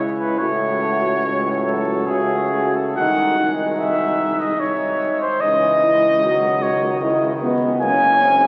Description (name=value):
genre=classical, hymn-like piece for brass band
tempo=65-76 BPM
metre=3/4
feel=rubato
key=C# minor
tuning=A4 = 441 Hz
part: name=mellow French horn section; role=second line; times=0.0-8.5 s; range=B3 to F#4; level=-26 LUFS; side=equal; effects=none
part: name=clear euphonium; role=accompaniment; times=0.0-8.5 s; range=F#3 to C4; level=-31 LUFS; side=equal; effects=none
part: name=clear trombone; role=accompaniment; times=0.0-8.5 s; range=A2 to E3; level=-29 LUFS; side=equal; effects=none
part: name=mellow tuba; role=bass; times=0.0-8.5 s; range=Gb1 to C#2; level=-31 LUFS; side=equal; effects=none
part: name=mellow cornet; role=melody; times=0.2-8.5 s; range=G#4 to Ab5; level=-21 LUFS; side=equal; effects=none
room=wet cathedral reverb, RT60 6.2 s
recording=very old 78 rpm record, vinyl crackle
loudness=-19 LUFS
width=mono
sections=0.0-8.5 A section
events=none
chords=0.4 F#madd9/C#; 3.0 G#/B#; 5.4 C#m; 7.8 Gb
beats=| 0.41 1.25 2.09 | 2.98 3.79 4.59 | 5.41 6.23 7.02 | 7.81